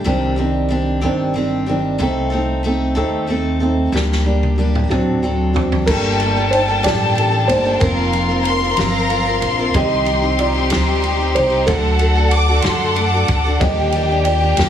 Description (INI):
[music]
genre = six-eight pop ballad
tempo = 62 BPM (dotted quarters)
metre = 6/8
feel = straight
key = G minor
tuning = A4 = 440 Hz
[part]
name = picked steel-string acoustic guitar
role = arpeggios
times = 0.0-14.7 s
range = G2 to Bb4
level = -23 LUFS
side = left 3 dB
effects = slapback echo
[part]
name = felt-muted upright piano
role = accompaniment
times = 0.1-14.7 s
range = D3 to Eb5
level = -19 LUFS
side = right 2 dB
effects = none
[part]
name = upright bass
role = bass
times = 0.1-14.7 s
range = F1 to F#2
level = -20 LUFS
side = equal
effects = none
[part]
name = natural country drum kit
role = drums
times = 4.0-14.7 s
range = crash cymbal, kick drum, ride cymbal, snare drum, toms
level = -24 LUFS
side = equal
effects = none
[part]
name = warm studio string section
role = sustained chords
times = 5.9-14.7 s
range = Eb4 to C6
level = -19 LUFS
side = left 1 dB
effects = none
[part]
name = warm studio violin section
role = second line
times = 8.5-13.5 s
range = Bb5 to D6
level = -22 LUFS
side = left 2 dB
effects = none
[sound]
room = light reverb, small room ambience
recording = heavily compressed radio sound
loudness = -14 LUFS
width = side -9 dB against mid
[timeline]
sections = 0.0-5.9 A section; 5.9-14.7 B section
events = drum fill 3.9-5.9; felt piano solo 5.9-14.7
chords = 0.1 Cmadd9; 2.0 Adim/C; 3.9 Gm/D; 4.9 D7; 5.9 Gmadd9; 7.8 Fsus4; 9.8 Cm; 11.7 D; 13.6 Ebmaj7